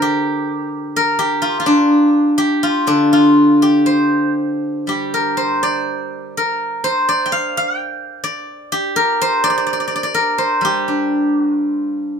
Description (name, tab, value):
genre	chinese traditional, Chinese solo plucked strings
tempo	54-65 BPM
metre	2/4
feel	rubato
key	G yu mode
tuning	A4 = 440 Hz
part	steel-string zither	solo	0.0-12.2 s	D3 to G5	-14 LUFS	equal	none
room	wet studio reverb, RT60 0.6 s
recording	minimal, uncompressed stereo recording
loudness	-14 LUFS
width	side -7 dB against mid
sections	0.0-12.2 A section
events	none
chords	none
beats	0.01 | 0.96 1.91 | 2.88 3.87 | 4.89 5.89 | 6.86 7.79 | 8.72 9.67 | 10.63 11.61